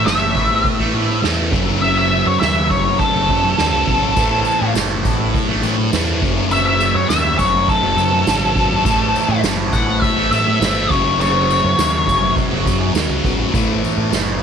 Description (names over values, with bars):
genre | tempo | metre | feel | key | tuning
psychedelic rock | 102 BPM | 4/4 | straight | F# minor | A4 = 440 Hz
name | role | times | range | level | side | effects
octave-fuzz lead guitar | melody | 0.0-12.3 s | A4 to F#5 | -18 LUFS | left 1 dB | distortion, tape echo
thick fuzz guitar | riff | 0.0-14.4 s | F#2 to A3 | -19 LUFS | equal | distortion, phaser
growling fingered electric bass | bass | 0.0-14.4 s | F#1 to A2 | -22 LUFS | equal | overdrive
soft-mallet drum kit | drums | 0.1-14.3 s | kick drum, ride cymbal, snare drum | -22 LUFS | right 3 dB | none
tanpura | drone | 4.2-14.4 s | F#2 to F#3 | -30 LUFS | left 2 dB | none
tambourine | percussion | 4.2-14.3 s | none | -33 LUFS | left 14 dB | none
room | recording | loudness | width
small room ambience | 1960s-style stereo | -14 LUFS | side -7 dB against mid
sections
0.0-14.4 A section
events
lead electric guitar solo 0.0-14.4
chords
0.0 A5; 1.5 F#m; 4.2 A; 6.2 F#m; 8.9 A; 10.9 F#m; 13.5 A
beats
0.06 0.65 1.24 | 1.83 2.41 3.00 3.59 | 4.17 4.76 5.34 5.93 | 6.52 7.10 7.69 8.27 | 8.86 9.45 10.03 10.62 | 11.20 11.79 12.37 12.96 | 13.54 14.13